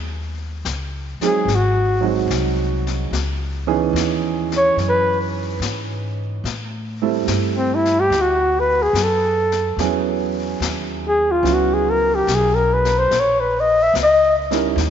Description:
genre	jazz ballad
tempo	72 BPM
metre	4/4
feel	swing 68% on 8ths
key	unclear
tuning	A4 = 440 Hz
part	upright bass	bass	0.0-14.9 s	G#1 to A2	-24 LUFS	left 1 dB	none
part	vintage brush drum kit	drums	0.7-14.9 s	brushed snare drum, hi-hat, snare drum	-30 LUFS	left 9 dB	none
part	breathy flugelhorn	melody	1.2-14.3 s	C4 to E5	-17 LUFS	left 1 dB	none
part	dark concert grand piano	accompaniment	1.2-14.8 s	E3 to A#4	-22 LUFS	right 10 dB	none
room	moderate echo chamber reverb, RT60 2.7 s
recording	1960s-style stereo with parts hard left and right, nothing above 7.7 kHz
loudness	-16 LUFS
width	side -8 dB against mid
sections	0.0-14.9 A section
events	flugelhorn solo 0.0-14.9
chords	0.0 D#m7; 1.5 G#7; 3.1 C#m9; 6.4 Am7; 8.1 D; 9.8 E69; 13.1 A#dim

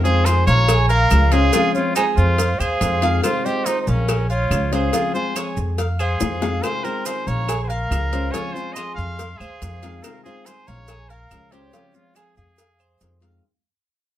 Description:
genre	latin, Cuban son and guajira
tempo	141 BPM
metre	4/4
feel	straight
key	F minor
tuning	A4 = 440 Hz
part	clear trumpet	melody	0.0-13.2 s	Db4 to F5	-24 LUFS	equal	slapback echo
part	nylon-string guitar	accompaniment	0.0-13.4 s	C3 to F4	-26 LUFS	left 5 dB	none
part	Cuban tres	arpeggios	0.0-13.4 s	F4 to F5	-28 LUFS	right 4 dB	none
part	upright bass	bass	0.0-13.4 s	Bb1 to F2	-19 LUFS	equal	none
part	mellow silver concert flute	second line	0.1-13.2 s	Bb4 to C6	-28 LUFS	right 3 dB	none
part	maracas	percussion	0.1-13.4 s	none	-33 LUFS	right 10 dB	none
part	cowbell and bongos	percussion	0.3-13.4 s	none	-28 LUFS	left 3 dB	none
part	claves	percussion	0.7-13.0 s	none	-34 LUFS	right 2 dB	none
room	light reverb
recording	none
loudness	-17 LUFS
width	side -12 dB against mid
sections	0.0-13.4 A section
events	fade-out 0.0-13.4; drum fill 6.2-6.6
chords	0.0 Fm7; 0.7 Bbm7; 1.5 Dbmaj7; 2.4 Fm7; 4.1 Bbm7; 4.9 Dbmaj7; 5.8 Fm7; 7.5 Bbm7; 8.3 Dbmaj7; 9.2 Fm7; 10.9 Bbm7; 11.7 Dbmaj7; 12.6 Fm7

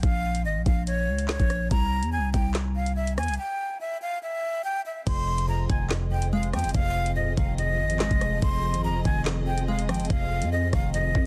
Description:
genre	hip hop, drill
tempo	143 BPM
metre	4/4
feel	half-time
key	F minor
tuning	A4 = 439 Hz
part	breathy jazz flute	melody	0.0-11.3 s	Db5 to C6	-32 LUFS	equal	digital delay
part	growling 808-style bass	bass	0.0-11.3 s	Eb1 to F2	-30 LUFS	equal	none
part	drill drum kit	drums	0.0-11.2 s	crash cymbal, handclaps, hi-hat, kick drum, rim click, snare drum	-29 LUFS	equal	vintage 12-bit sampler grit, soft clipping on snare
part	glassy wavetable pluck	accompaniment	5.1-11.3 s	F2 to Ab3	-33 LUFS	equal	chorus
part	warm symphonic string section	sustained chords	5.1-11.3 s	F3 to Eb5	-38 LUFS	equal	none
room	little or no reverb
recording	dense, heavily limited modern master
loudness	-26 LUFS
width	mono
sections	0.0-5.1 A section; 5.1-11.3 B section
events	break 3.4-5.1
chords	0.0 Bbm; 1.7 C; 5.1 Fm7

